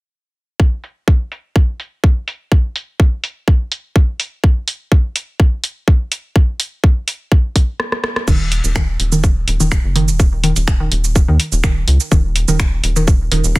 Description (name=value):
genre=minimal techno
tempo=125 BPM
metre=4/4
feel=straight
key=Eb minor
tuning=A4 = 441 Hz
part: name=electronic kick drum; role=drums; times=0.6-13.6 s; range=none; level=-12 LUFS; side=equal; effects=none
part: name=garage drum kit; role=drums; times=0.8-13.6 s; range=crash cymbal, finger snaps, hi-hat, rim click, shaker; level=-20 LUFS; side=right 1 dB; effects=low-pass filter on hats, soft clipping on snare, low-pass filter on snare, low-pass filter on cymbals, low-pass filter on perc, low-pass filter on room
part: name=hollow square pluck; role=riff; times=8.3-13.4 s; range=Eb3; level=-20 LUFS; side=right 1 dB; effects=chorus, sidechain pumping, dub echo
part: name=rubbery square bass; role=bass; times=8.3-13.6 s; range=Eb1 to Eb2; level=-16 LUFS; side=equal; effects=sidechain pumping
room=little or no reverb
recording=dense, heavily limited modern master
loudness=-13 LUFS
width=side -22 dB against mid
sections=0.6-8.3 A section; 8.3-13.6 B section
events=filter sweep on drum 0.6-8.3; drum fill 7.8-8.3; stop 7.8-8.3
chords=none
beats=| 0.60 1.08 1.56 2.04 | 2.52 3.00 3.48 3.96 | 4.44 4.92 5.40 5.88 | 6.36 6.84 7.32 7.80 | 8.28 8.76 9.24 9.72 | 10.20 10.68 11.16 11.64 | 12.12 12.60 13.08 13.56